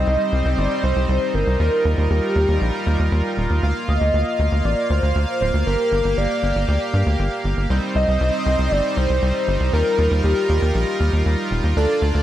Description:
synthwave; 118 BPM; 4/4; straight; A4 = 440 Hz
warm velvety synth lead; melody; 0.0-12.2 s; G4 to Eb5; -22 LUFS; equal; chorus, tape echo
soft supersaw; sustained chords; 0.0-12.2 s; G3 to F5; -24 LUFS; right 1 dB
tight sequencer bass; bass; 0.0-12.2 s; D1 to G2; -19 LUFS; equal
light reverb; -17 LUFS; side -12 dB against mid
0.0-12.2 A section
0.0 Cm; 1.6 Ebadd9; 3.6 Bb/D; 5.7 Gm; 7.7 Cm; 9.7 Ebadd9
0.07 0.58 1.09 | 1.60 2.10 2.61 3.12 | 3.63 4.14 4.65 5.16 | 5.66 6.17 6.68 7.19 | 7.70 8.21 8.71 9.22 | 9.73 10.24 10.75 11.26 | 11.77

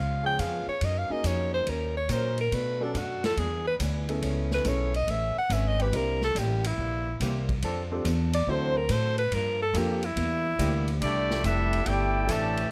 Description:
jazz, big band swing; 141 BPM; 4/4; swing 67% on 8ths; A4 = 440 Hz
clear alto saxophone; melody; 0.0-11.0 s; D4 to G5; -31 LUFS; equal
picked steel-string acoustic guitar; accompaniment; 0.0-12.6 s; G2 to B4; -41 LUFS; equal
upright bass; bass; 0.0-12.7 s; F1 to B2; -31 LUFS; equal
warm trombone section; sustained chords; 0.2-2.9, 5.8-12.7 s; E3 to C5; -39 LUFS; equal
swinging big-band drum kit; drums; 0.4-12.6 s; hi-hat, kick drum, ride cymbal, snare drum; -39 LUFS; equal
warm upright piano; accompaniment; 1.1-10.0 s; Bb3 to C5; -34 LUFS; equal
warm trumpet section; melody; 11.0-12.7 s; A3 to A5; -30 LUFS; equal
clear trombone section; second line; 11.0-12.7 s; A2 to G4; -34 LUFS; equal
light reverb; close, detailed microphones; -28 LUFS; mono
0.0-11.0 A section; 11.0-12.7 B section
alto saxophone solo 0.0-11.0
0.0 Db7; 0.8 Gb6; 2.5 Bm7; 3.4 E7; 4.2 Amaj9; 5.9 C7; 7.6 F6; 8.5 D7; 9.3 Gm7; 10.2 C7; 11.0 C69
0.39 | 0.82 1.24 1.67 2.10 | 2.52 2.95 3.37 3.80 | 4.22 4.65 5.08 5.50 | 5.93 6.35 6.78 7.20 | 7.62 8.05 8.47 8.89 | 9.32 9.74 10.17 10.59 | 11.01 11.44 11.86 12.29 | 12.71

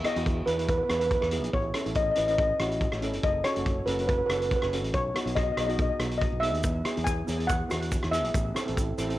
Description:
calypso; 141 BPM; 4/4; swing 54% on 16ths; E major; A4 = 436 Hz
steel pan; melody; 0.0-9.2 s; B4 to G#5; -29 LUFS; equal; cassette tape, plate reverb, tape echo
steel pan; accompaniment; 0.0-9.2 s; B3 to B4; -33 LUFS; right 1 dB; cassette tape, plate reverb
loose indie drum kit; drums; 0.0-9.2 s; hi-hat, kick drum, rim click; -30 LUFS; equal; cassette tape
modern bright fingered electric bass; bass; 0.2-9.2 s; F#1 to E2; -32 LUFS; equal
egg shaker; percussion; 6.6-9.1 s; -44 LUFS; right 4 dB
moderate studio reverb, RT60 0.5 s; home recording on cassette; -25 LUFS; side -15 dB against mid
0.0-9.2 A section
0.0 Emaj7; 1.5 A; 3.2 F#m; 4.9 B; 6.6 E; 8.3 Am
0.26 0.69 1.11 | 1.54 1.96 2.39 2.81 | 3.24 3.66 4.09 4.51 | 4.94 5.37 5.79 6.22 | 6.64 7.07 7.50 7.92 | 8.35 8.77

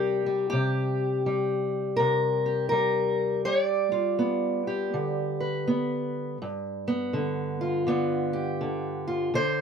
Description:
acoustic country blues, solo or duo; 82 BPM; 4/4; swing 63% on 8ths; G mixolydian; A4 = 440 Hz
fingerpicked steel-string acoustic guitar; solo; 0.0-9.6 s; G2 to D5; -24 LUFS; equal
light reverb; close, detailed microphones; -25 LUFS; side -6 dB against mid
0.0-9.6 A section
0.0 C5; 3.5 G7
| 0.53 1.26 2.00 2.73 | 3.46 4.20 4.93 5.67 | 6.40 7.14 7.87 8.61 | 9.34

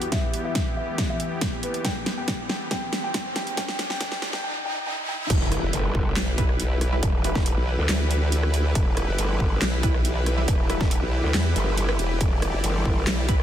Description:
heavy wobble dubstep; 139 BPM; 4/4; half-time; E minor; A4 = 440 Hz
felt-muted upright piano; melody; 0.0-5.3 s; B4 to G5; -32 LUFS; left 1 dB; low-pass filter, dub echo
supersaw chords; sustained chords; 0.0-13.4 s; E2 to D5; -31 LUFS; left 1 dB; sidechain pumping, low-pass filter
dubstep drum kit; drums; 0.0-13.4 s; crash cymbal, handclaps, hi-hat, rim click, snare drum; -29 LUFS; equal; soft clipping on snare
riser and impact; sound effects; 0.1-7.0 s; -33 LUFS; equal
electronic kick drum; drums; 0.1-13.4 s; -25 LUFS; equal
growl bass; bass; 5.3-13.1 s; E1 to D2; -26 LUFS; equal; distortion, chorus, overdrive
formant-sweep wobble bass; bass; 5.6-13.4 s; E1 to E2; -23 LUFS; equal; chorus, overdrive
orchestra-hit-like synth stab; stabs; 6.4-13.4 s; G3 to B4; -33 LUFS; right 2 dB; built-in reverb, dub echo
light reverb; dense, heavily limited modern master, high-pass filter; -22 LUFS; side -11 dB against mid
0.0-5.3 A section; 5.3-13.4 B section
build-up 0.0-5.3; drum fill 0.0-4.4; filter sweep on supersaw synth 0.0-5.3; filter sweep on felt piano 0.0-5.3; filter sweep 0.0-5.3; riser 0.1-5.3; drop 5.3-13.4; impact 5.3-7.0
0.0 Em
| 0.12 0.55 0.98 1.42 | 1.85 2.28 2.71 3.14 | 3.57 4.00 4.44 4.87 | 5.30 5.73 6.16 6.59 | 7.03 7.46 7.89 8.32 | 8.75 9.19 9.62 10.05 | 10.48 10.91 11.34 11.78 | 12.21 12.64 13.07

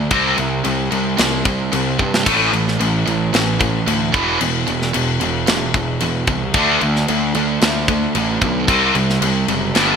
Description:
hard rock; 112 BPM; 4/4; straight; A4 = 443 Hz
crunchy overdriven guitar; riff; 0.0-10.0 s; E2 to D4; -22 LUFS; left 11 dB; ensemble chorus
high-gain distorted guitar; riff; 0.0-10.0 s; E2 to D4; -20 LUFS; right 10 dB; distortion
fuzz picked electric bass; bass; 0.0-10.0 s; E1 to G2; -21 LUFS; equal; overdrive
tight metal drum kit; drums; 0.1-9.9 s; crash cymbal, kick drum, snare drum; -20 LUFS; left 2 dB; gated reverb
light reverb; bright 1980s-style digital production; -15 LUFS; side -6 dB against mid
0.0-10.0 A section
drum fill 2.0
0.1 C5; 2.3 A5; 4.1 E5; 6.6 D5; 8.7 C5
| 0.12 0.66 1.19 1.73 | 2.27 2.80 3.34 3.88 | 4.41 4.95 5.48 6.02 | 6.55 7.08 7.62 8.15 | 8.69 9.22 9.75

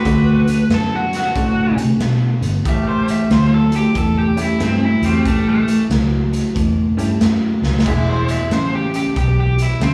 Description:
electric blues shuffle; 92 BPM; 4/4; swing 65% on 8ths; A mixolydian; A4 = 440 Hz
biting overdriven guitar; melody; 0.0-9.9 s; A3 to E5; -24 LUFS; equal; slapback echo
electric guitar through a small old amp; riff; 0.0-9.9 s; E2 to B3; -21 LUFS; equal; subtle chorus
clear saxophone section; stabs; 0.0-8.7 s; G#3 to G4; -29 LUFS; equal; slapback echo
bright upright piano; accompaniment; 0.1-8.2 s; F#3 to A4; -28 LUFS; equal; slapback echo
vintage muted fingered electric bass; bass; 0.1-9.9 s; E1 to C3; -22 LUFS; equal
raw garage drum kit; drums; 0.1-9.9 s; crash cymbal, hi-hat, kick drum, snare drum; -24 LUFS; equal
small room ambience; live gig heard through the venue's PA, club reverb; -17 LUFS; mono
0.0-9.9 A section
overdriven electric guitar solo 0.0-9.9; drum fill 7.5-7.9
0.0 D7; 2.6 A7; 7.9 E7
| 0.05 0.70 1.35 2.00 | 2.65 3.30 3.95 4.60 | 5.25 5.90 6.55 7.20 | 7.85 8.50 9.15 9.80

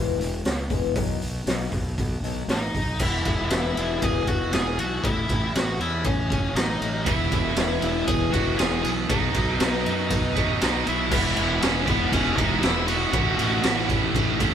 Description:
quiet-loud alternative rock; 118 BPM; 4/4; straight; E major; A4 = 439 Hz
fingerpicked old ladder-braced acoustic guitar; arpeggios; 0.0-11.1 s; A2 to E4; -31 LUFS; left 9 dB
fuzz fingered electric bass; bass; 0.0-14.5 s; E1 to F#2; -29 LUFS; equal; overdrive
raw garage drum kit; drums; 0.2-14.5 s; crash cymbal, hi-hat, kick drum, ride cymbal, snare drum; -25 LUFS; equal
octave-fuzz lead guitar; melody; 2.5-13.9 s; B3 to G#5; -28 LUFS; equal; distortion
cranked stack guitar; riff; 7.1-14.5 s; E2 to E4; -26 LUFS; right 10 dB; overdrive
thick fuzz guitar; riff; 11.1-14.5 s; A2 to E4; -29 LUFS; left 8 dB; distortion
light reverb; band playing live in one room; -21 LUFS; side -9 dB against mid
0.0-3.0 A section; 3.0-11.1 B section; 11.1-14.5 C section
0.0 E; 1.0 B; 3.0 E; 5.0 A6; 7.1 E; 9.1 B; 11.1 E; 13.1 A6
0.45 | 0.96 1.47 1.98 2.49 | 3.00 3.51 4.02 4.53 | 5.04 5.55 6.05 6.56 | 7.07 7.58 8.08 8.59 | 9.10 9.60 10.11 10.61 | 11.12 11.62 12.13 12.63 | 13.14 13.64 14.15

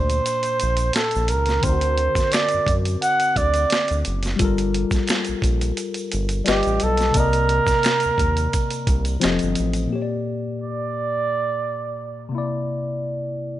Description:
R&B, neo-soul; 87 BPM; 4/4; swing 53% on 16ths; Bb major; A4 = 440 Hz
trumpet with bucket mute; melody; 0.0-12.3 s; G4 to F#5; -21 LUFS; right 3 dB
tine electric piano; accompaniment; 0.0-13.6 s; Bb2 to Eb5; -26 LUFS; left 4 dB; phaser
round analog bass; bass; 0.0-9.9 s; F1 to F#2; -23 LUFS; equal
boom bap sampler-style drum kit; drums; 0.1-9.9 s; hi-hat, kick drum, snare drum; -23 LUFS; equal
tube shaker and finger snaps; percussion; 0.1-9.9 s; -34 LUFS; right 1 dB
light reverb, studio ambience; nothing above 10.8 kHz; -19 LUFS; side -13 dB against mid
0.0-9.9 A section; 9.9-13.6 B section
0.0 Bbadd9; 1.6 D7b13; 4.4 Gm9; 6.5 G7b13; 7.2 Cm9; 9.2 F7; 9.9 Bb6; 12.3 C9
0.26 0.95 | 1.64 2.33 3.02 3.71 | 4.39 5.08 5.77 6.46 | 7.15 7.84 8.53 9.22 | 9.91 10.60 11.29 11.98 | 12.67 13.36

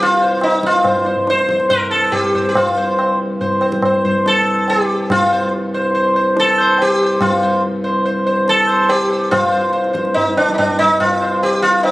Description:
indian classical, Hindustani; 142 BPM; 4/4; straight; C raga bhimpalasi; A4 = 441 Hz
sitar; melody; 0.0-11.9 s; D4 to C5; -14 LUFS; equal; tape echo
pedal harmonium; drone; 0.0-11.9 s; C2 to G2; -23 LUFS; left 1 dB
tabla; percussion; 0.4-11.9 s; -22 LUFS; equal
moderate recital hall reverb, RT60 1.5 s; recorded on a phone in the room, club ambience, compression; -13 LUFS; side -18 dB against mid
0.0-9.3 A section; 9.3-11.9 B section
0.42 | 0.84 1.27 1.70 2.12 | 2.55 2.98 3.40 3.83 | 4.25 4.67 5.10 5.52 | 5.95 6.37 6.79 7.21 | 7.63 8.06 8.48 8.90 | 9.32 9.74 10.16 10.58 | 11.00 11.42 11.83

